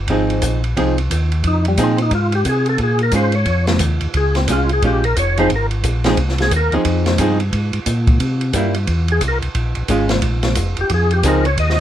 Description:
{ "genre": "soul jazz organ trio", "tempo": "178 BPM", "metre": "4/4", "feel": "swing 62% on 8ths", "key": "F minor", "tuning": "A4 = 440 Hz", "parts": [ { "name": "mellow tonewheel organ", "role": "bass", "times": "0.0-11.8 s", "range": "F1 to C3", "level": "-18 LUFS", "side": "equal", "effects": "chorus vibrato, slow rotary speaker" }, { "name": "archtop guitar, miked and amplified", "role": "accompaniment", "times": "0.1-11.4 s", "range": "F3 to Ab4", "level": "-18 LUFS", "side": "right 1 dB", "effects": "none" }, { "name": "open jazz drum kit", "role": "drums", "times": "0.1-11.8 s", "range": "hi-hat, kick drum, ride cymbal, snare drum", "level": "-21 LUFS", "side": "right 1 dB", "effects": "none" }, { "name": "percussive tonewheel organ", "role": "melody", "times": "1.5-6.7, 9.1-11.8 s", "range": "G3 to Eb5", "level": "-19 LUFS", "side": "left 1 dB", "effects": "slow rotary speaker, overdrive, chorus vibrato" } ], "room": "little or no reverb", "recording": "close, detailed microphones", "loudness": "-14 LUFS", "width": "side -11 dB against mid", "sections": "0.0-11.8 A section", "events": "tonewheel organ solo 0.0-11.8", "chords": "0.0 Fm7; 2.8 Bbm7; 5.5 Fm7; 8.2 C7; 9.5 Bbm7; 10.9 Fm7" }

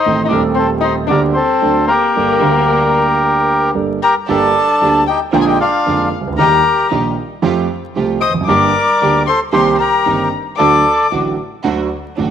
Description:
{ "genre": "tango", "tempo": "114 BPM", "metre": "4/4", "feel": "rubato", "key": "G minor", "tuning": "A4 = 443 Hz", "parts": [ { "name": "bandoneon", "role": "melody", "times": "0.0-11.1 s", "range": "D4 to Eb5", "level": "-14 LUFS", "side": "equal", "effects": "none" }, { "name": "warm violin", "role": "second line", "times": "0.0-11.1 s", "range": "Bb3 to Eb6", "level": "-18 LUFS", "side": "left 10 dB", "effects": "none" }, { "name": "warm concert grand piano", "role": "accompaniment", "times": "0.1-12.3 s", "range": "Eb1 to Bb4", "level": "-16 LUFS", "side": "right 4 dB", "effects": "none" }, { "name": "bright symphonic string section", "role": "stabs", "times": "4.3-12.3 s", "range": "A3 to Ab4", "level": "-26 LUFS", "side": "right 5 dB", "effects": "none" } ], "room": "moderate echo chamber reverb, RT60 1.6 s, small room ambience", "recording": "1960s-style stereo, vinyl crackle", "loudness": "-12 LUFS", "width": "side -9 dB against mid", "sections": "0.0-4.3 A section; 4.3-12.3 A section", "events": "none", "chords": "0.1 Adim; 1.1 Gm/D; 1.6 D; 2.2 Gmadd9; 4.3 Gm; 5.3 Bb7; 6.4 Eb; 7.4 Fadd9; 8.5 Gm; 9.5 Cm7; 10.6 D" }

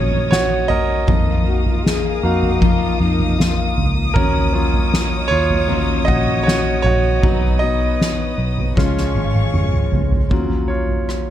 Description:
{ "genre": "pop ballad", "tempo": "78 BPM", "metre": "4/4", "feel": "straight", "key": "Eb minor", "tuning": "A4 = 440 Hz", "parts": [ { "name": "clear concert grand piano", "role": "accompaniment", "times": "0.0-11.3 s", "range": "Gb3 to F5", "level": "-21 LUFS", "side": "right 3 dB", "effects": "none" }, { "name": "dark chamber string section", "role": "sustained chords", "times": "0.0-10.3 s", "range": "Ab4 to Eb6", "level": "-26 LUFS", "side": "left 2 dB", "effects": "none" }, { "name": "fingerpicked steel-string acoustic guitar", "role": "arpeggios", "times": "0.0-11.3 s", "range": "F2 to Gb4", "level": "-25 LUFS", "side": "left 10 dB", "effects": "digital delay" }, { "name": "vintage muted fingered electric bass", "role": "bass", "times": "0.0-11.3 s", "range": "Ab1 to F2", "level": "-22 LUFS", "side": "equal", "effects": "none" }, { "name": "soft-mallet drum kit", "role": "drums", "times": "0.1-11.3 s", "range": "kick drum, rim click, snare drum, toms", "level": "-19 LUFS", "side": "equal", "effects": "none" }, { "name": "warm French horn section", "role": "second line", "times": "1.5-4.0 s", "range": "Eb4 to Ab4", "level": "-24 LUFS", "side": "left 8 dB", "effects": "none" } ], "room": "studio reverb", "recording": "none", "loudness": "-15 LUFS", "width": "side -11 dB against mid", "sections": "0.0-10.3 A section", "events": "grand piano solo 0.0-10.3; drum fill 8.8-10.3", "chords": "0.0 Ebm7; 1.1 Bbsus4/F; 4.2 Ebm7; 7.2 B; 8.8 Db; 10.3 Ebm7" }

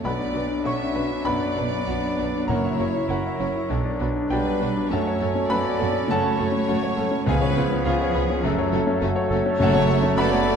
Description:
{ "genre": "classical, romantic movement for piano and orchestra", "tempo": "101 BPM", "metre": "4/4", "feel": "rubato", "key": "B minor", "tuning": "A4 = 440 Hz", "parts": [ { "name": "clear concert grand piano", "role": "melody", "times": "0.0-10.6 s", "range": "B1 to C#6", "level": "-24 LUFS", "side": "left 2 dB", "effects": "none" }, { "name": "rich studio violin section", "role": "melody", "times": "0.0-10.6 s", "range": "E#4 to A4", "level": "-38 LUFS", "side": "left 6 dB", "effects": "none" }, { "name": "clear clarinet", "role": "second line", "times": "0.0-10.6 s", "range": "A3 to E4", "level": "-33 LUFS", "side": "left 2 dB", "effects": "none" }, { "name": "concert flute", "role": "second line", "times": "0.0-10.6 s", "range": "G#4 to E5", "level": "-34 LUFS", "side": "equal", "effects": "none" }, { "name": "rich studio violin section", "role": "second line", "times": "0.0-10.6 s", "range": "G#4 to E5", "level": "-32 LUFS", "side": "left 4 dB", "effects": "none" }, { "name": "clear studio viola section", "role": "accompaniment", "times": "0.0-10.6 s", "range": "F#3 to E4", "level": "-34 LUFS", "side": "right 3 dB", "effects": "none" }, { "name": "mellow bassoon", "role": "accompaniment", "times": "0.0-10.6 s", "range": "E#3 to F#3", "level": "-32 LUFS", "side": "right 2 dB", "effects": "none" }, { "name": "dark French horn section", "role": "sustained chords", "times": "0.0-10.6 s", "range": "E#3 to E4", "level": "-32 LUFS", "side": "left 3 dB", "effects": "none" }, { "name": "mellow trumpet", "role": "stabs", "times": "0.0-10.6 s", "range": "A4 to C#5", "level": "-34 LUFS", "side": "right 4 dB", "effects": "none" }, { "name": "bright studio double bass section", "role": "bass", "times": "0.0-10.6 s", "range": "F#1 to F#2", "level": "-30 LUFS", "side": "right 4 dB", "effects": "none" }, { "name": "rich studio cello section", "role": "bass", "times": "0.0-10.6 s", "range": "E#3 to C#4", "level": "-30 LUFS", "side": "right 4 dB", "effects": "none" }, { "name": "timpani", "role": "percussion", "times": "2.5-3.4, 7.3-10.4 s", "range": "F#2 to C#3", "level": "-29 LUFS", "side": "equal", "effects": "none" } ], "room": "wet scoring stage reverb, RT60 1.5 s", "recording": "dark, warm production", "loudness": "-20 LUFS", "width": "side -7 dB against mid", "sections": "0.0-10.6 A section", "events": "none", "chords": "0.0 Bm; 2.5 F#7; 3.7 Bm; 4.9 F#m; 7.3 C#7; 8.4 F#m" }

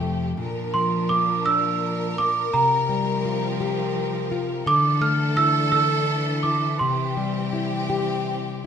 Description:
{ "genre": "children's music, lullaby", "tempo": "56 BPM (dotted quarters)", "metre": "6/8", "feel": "rubato", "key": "unclear", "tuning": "A4 = 440 Hz", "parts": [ { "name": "nylon-string guitar", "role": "accompaniment", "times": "0.0-8.7 s", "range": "F2 to A4", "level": "-25 LUFS", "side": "left 3 dB", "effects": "none" }, { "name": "clear symphonic string section", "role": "sustained chords", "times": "0.0-8.7 s", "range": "E3 to Bb4", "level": "-28 LUFS", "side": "equal", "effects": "none" }, { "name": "worn celesta", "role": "melody", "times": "0.7-7.9 s", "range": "Bb5 to F6", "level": "-22 LUFS", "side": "right 4 dB", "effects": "none" } ], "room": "moderate recital hall reverb, RT60 1.4 s", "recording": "minimal, uncompressed stereo recording", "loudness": "-20 LUFS", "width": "side -8 dB against mid", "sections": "0.4-8.7 A section", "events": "none", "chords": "0.4 Bb; 2.5 C7sus4; 4.7 Dsus2; 6.8 C" }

